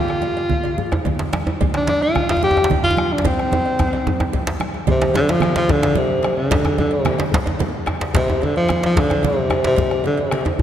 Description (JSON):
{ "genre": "west african traditional, West African drum ensemble", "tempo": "147 BPM (dotted quarters)", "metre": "12/8", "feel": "straight", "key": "unclear", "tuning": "A4 = 438 Hz", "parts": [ { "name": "breathy tenor saxophone", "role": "melody", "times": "0.0-10.5 s", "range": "C3 to G4", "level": "-19 LUFS", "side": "equal", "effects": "none" }, { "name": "bombo", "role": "percussion", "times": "0.1-10.6 s", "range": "none", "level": "-25 LUFS", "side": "left 1 dB", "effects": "none" }, { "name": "congas", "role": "percussion", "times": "0.1-10.6 s", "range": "none", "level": "-26 LUFS", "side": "right 4 dB", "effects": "none" }, { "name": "djembe", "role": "percussion", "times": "0.1-10.6 s", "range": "none", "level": "-29 LUFS", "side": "left 5 dB", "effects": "none" }, { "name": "cowbell", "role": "percussion", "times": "0.2-10.6 s", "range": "none", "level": "-33 LUFS", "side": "right 4 dB", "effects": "none" }, { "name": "djembe", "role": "percussion", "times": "0.9-10.6 s", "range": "none", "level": "-24 LUFS", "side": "right 2 dB", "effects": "none" } ], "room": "wet concert hall reverb, RT60 2.6 s", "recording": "dark, warm production", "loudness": "-16 LUFS", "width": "side -10 dB against mid", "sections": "0.0-4.9 A section; 4.9-10.6 B section", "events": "drum fill 3.2-4.9", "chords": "none", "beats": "0.37 0.78 1.19 | 1.60 2.01 2.42 2.83 | 3.24 3.65 4.06 4.47 | 4.88 5.29 5.70 6.11 | 6.52 6.92 7.33 7.74 | 8.15 8.56 8.96 9.37 | 9.78 10.18 10.59" }